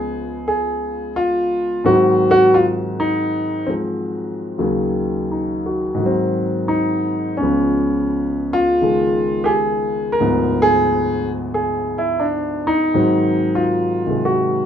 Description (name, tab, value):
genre	solo jazz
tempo	87 BPM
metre	4/4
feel	swing 68% on 8ths, rubato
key	unclear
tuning	A4 = 444 Hz
part	warm grand piano	solo	0.0-14.7 s	Db2 to Bb4	-16 LUFS	equal	none
room	wet club reverb, RT60 0.7 s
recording	minimal, uncompressed stereo recording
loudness	-16 LUFS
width	side -9 dB against mid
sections	0.0-14.7 A section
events	none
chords	0.0 Db7; 1.9 Ab7; 4.6 Ebm7; 6.0 Ab7; 7.4 Db7; 10.2 Ddim7; 12.9 Ab7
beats	0.49 1.17 | 1.86 2.55 3.23 3.91 | 4.60 5.29 6.00 6.70 | 7.41 8.12 8.81 9.51 | 10.20 10.88 11.57 12.25 | 12.94 13.62 14.31